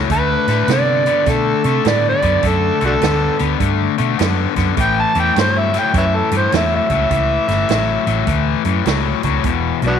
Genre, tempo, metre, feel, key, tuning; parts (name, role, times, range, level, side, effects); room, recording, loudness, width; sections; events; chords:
electric blues shuffle; 103 BPM; 4/4; swing 64% on 8ths; A4 = 439 Hz
cranked stack guitar; riff; 0.0-10.0 s; E2 to B3; -18 LUFS; left 12 dB; overdrive
vintage muted fingered electric bass; bass; 0.0-10.0 s; E1 to C3; -20 LUFS; right 2 dB
overdriven harmonica; melody; 0.1-10.0 s; B3 to A5; -18 LUFS; right 2 dB; slapback echo
swinging big-band drum kit; drums; 0.1-9.9 s; hi-hat, kick drum, snare drum; -23 LUFS; right 7 dB
light reverb, small room reverb; 1960s-style stereo with parts hard left and right; -14 LUFS; side -8 dB against mid
0.0-10.0 A section
harmonica solo 0.0-10.0
0.1 D7; 4.8 A7; 9.4 E5